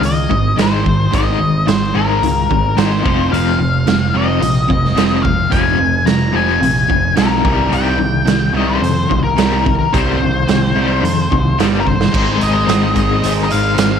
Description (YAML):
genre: classic rock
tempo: 109 BPM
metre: 4/4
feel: straight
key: F minor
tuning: A4 = 440 Hz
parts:
  - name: octave-fuzz lead guitar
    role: melody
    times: 0.0-14.0 s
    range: Bb4 to Bb5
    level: -18 LUFS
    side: left 4 dB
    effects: distortion, tape echo
  - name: crunchy overdriven guitar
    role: riff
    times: 0.0-14.0 s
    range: F2 to Ab4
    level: -19 LUFS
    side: left 10 dB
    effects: tremolo
  - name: sludgy distorted guitar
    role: riff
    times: 0.0-14.0 s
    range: F2 to Ab4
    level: -20 LUFS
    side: right 10 dB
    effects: overdrive
  - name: modern bright picked electric bass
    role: bass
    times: 0.0-14.0 s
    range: F1 to F2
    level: -19 LUFS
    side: equal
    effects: none
  - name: raw garage drum kit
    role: drums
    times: 0.0-13.9 s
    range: crash cymbal, hi-hat, kick drum, snare drum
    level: -18 LUFS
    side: right 5 dB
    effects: none
room: light reverb, small room ambience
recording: 1960s-style stereo with parts hard left and right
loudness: -12 LUFS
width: side -7 dB against mid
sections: 0.0-12.1 A section; 12.1-14.0 B section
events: drum fill 11.8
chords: 0.0 Abadd9; 3.0 Fm; 7.4 Cm7; 12.1 Ab